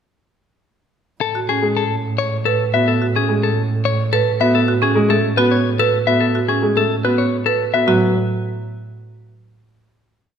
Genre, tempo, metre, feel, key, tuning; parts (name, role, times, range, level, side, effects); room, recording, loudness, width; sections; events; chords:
classical, minimalist pattern music; 108 BPM; 3/4; straight; A major; A4 = 440 Hz
semi-hollow electric guitar; melody; 1.2-8.1 s; G#4 to E5; -20 LUFS; left 8 dB
warm double bass; bass; 1.2-8.1 s; A2; -22 LUFS; right 3 dB
marimba with hard mallets; arpeggios; 1.4-8.1 s; C#4 to B4; -21 LUFS; right 6 dB
dark concert grand piano; accompaniment; 1.6-8.1 s; F#3 to B3; -20 LUFS; equal
wet scoring stage reverb, RT60 1.6 s; -15 LUFS; side -8 dB against mid
1.2-7.9 A section; 7.9-9.5 final chord
1.2 Asus2; 7.9 N.C.